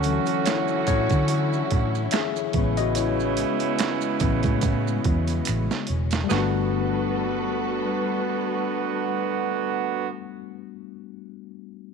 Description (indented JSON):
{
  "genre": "R&B, neo-soul",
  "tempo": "72 BPM",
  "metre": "4/4",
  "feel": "swing 56% on 16ths",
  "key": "G lydian",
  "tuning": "A4 = 441 Hz",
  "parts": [
    { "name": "bright tine electric piano", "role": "accompaniment", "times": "0.0-11.9 s", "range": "C#3 to E5", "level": "-28 LUFS", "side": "left 14 dB", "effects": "medium stereo tremolo" },
    { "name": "warm studio string section", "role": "sustained chords", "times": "0.0-10.1 s", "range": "D3 to B4", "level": "-32 LUFS", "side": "equal", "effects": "none" },
    { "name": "warm horn section", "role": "stabs", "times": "0.0-10.1 s", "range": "C#3 to F#4", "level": "-27 LUFS", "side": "right 13 dB", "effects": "slapback echo" },
    { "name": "vintage muted fingered electric bass", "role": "bass", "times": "0.0-10.1 s", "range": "E1 to D3", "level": "-26 LUFS", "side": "right 1 dB", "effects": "transformer saturation" },
    { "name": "boom bap sampler-style drum kit", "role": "drums", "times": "0.0-6.5 s", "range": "hi-hat, kick drum, snare drum", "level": "-26 LUFS", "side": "right 4 dB", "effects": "overdrive" },
    { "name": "maracas and finger snaps", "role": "percussion", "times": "0.0-6.7 s", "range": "none", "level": "-37 LUFS", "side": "right 15 dB", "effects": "none" }
  ],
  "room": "small room ambience",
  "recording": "1960s-style stereo with parts hard left and right",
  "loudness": "-22 LUFS",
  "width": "side -6 dB against mid",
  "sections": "0.0-6.3 A section; 6.3-9.6 B section",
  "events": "tine electric piano solo 0.0-6.3; drum fill 5.5-6.3",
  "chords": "0.0 Dmaj9; 2.5 Amaj9; 6.3 Gmaj9",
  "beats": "0.46 1.29 2.13 | 2.96 3.79 4.63 5.46 | 6.29 7.13 7.96 8.79"
}